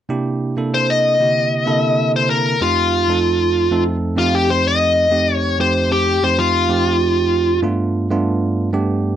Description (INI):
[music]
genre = blues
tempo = 96 BPM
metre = 4/4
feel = straight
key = unclear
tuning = A4 = 439 Hz
[part]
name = bell-like tine electric piano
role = accompaniment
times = 0.1-9.2 s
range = F2 to A4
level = -18 LUFS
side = right 2 dB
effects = none
[part]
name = smooth overdriven lead guitar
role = melody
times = 0.7-7.6 s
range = F4 to Eb5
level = -15 LUFS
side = left 1 dB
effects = slapback echo
[sound]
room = light reverb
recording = dry, close 1970s-style studio recording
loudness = -14 LUFS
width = side -10 dB against mid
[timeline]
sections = 0.1-9.2 A section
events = none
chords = 0.1 C7; 2.6 F7; 7.6 G7